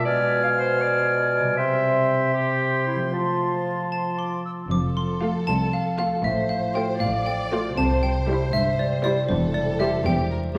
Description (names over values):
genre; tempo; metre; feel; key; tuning
cinematic, playful, whimsical film cue; 78 BPM (dotted quarters); 6/8; straight; F major; A4 = 441 Hz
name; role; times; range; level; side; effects
bright clarinet; second line; 0.0-4.4 s; E4 to F5; -28 LUFS; equal; none
concert harp; arpeggios; 0.0-10.6 s; A2 to C6; -31 LUFS; equal; none
concert flute; second line; 0.1-4.5 s; C6 to F6; -30 LUFS; equal; none
warm oboe; second line; 0.1-4.4 s; G5 to A5; -32 LUFS; equal; none
dark bassoon; accompaniment; 0.1-4.4 s; B2 to F3; -29 LUFS; equal; none
xylophone with wooden mallets; melody; 3.9-10.3 s; C5 to D6; -29 LUFS; equal; none
rich studio violin section; second line; 4.7-10.4 s; G4 to D5; -34 LUFS; equal; none
rich studio cello section; bass; 4.7-10.6 s; C2 to C3; -31 LUFS; equal; none
rich studio double bass section; bass; 4.7-10.6 s; E1 to C2; -31 LUFS; equal; none
rich studio violin section; melody; 5.2-10.0 s; C5 to F5; -40 LUFS; equal; none
rich studio viola section; accompaniment; 5.2-10.6 s; G3 to G4; -32 LUFS; equal; none
room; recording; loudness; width
wet scoring stage reverb, RT60 1.9 s; recorded in a church or concert hall, vinyl crackle; -23 LUFS; mono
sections
0.0-4.7 A section; 4.7-10.6 B section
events
none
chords
0.1 Bdim7; 1.6 C; 3.1 F; 6.2 F/A; 7.8 C; 9.3 C/E